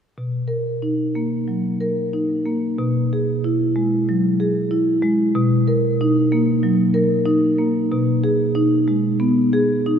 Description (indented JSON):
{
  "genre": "classical, contemporary piece for solo marimba",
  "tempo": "93 BPM",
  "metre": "4/4",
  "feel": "straight",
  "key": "B major",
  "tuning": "A4 = 440 Hz",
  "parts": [
    { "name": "marimba with soft mallets", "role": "solo", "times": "0.2-10.0 s", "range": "B2 to A#4", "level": "-17 LUFS", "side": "equal", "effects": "none" }
  ],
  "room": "wet cathedral reverb, RT60 4.5 s",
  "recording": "dark, warm production",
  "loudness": "-17 LUFS",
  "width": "side -8 dB against mid",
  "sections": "0.2-10.0 A section",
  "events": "none",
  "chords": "0.2 Bmaj7; 2.8 Eadd9/B; 5.3 Bmaj7; 7.9 B6",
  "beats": "| 0.18 0.83 1.48 2.13 | 2.78 3.43 4.07 4.71 | 5.34 5.98 6.62 7.26 | 7.90 8.54 9.19 9.86"
}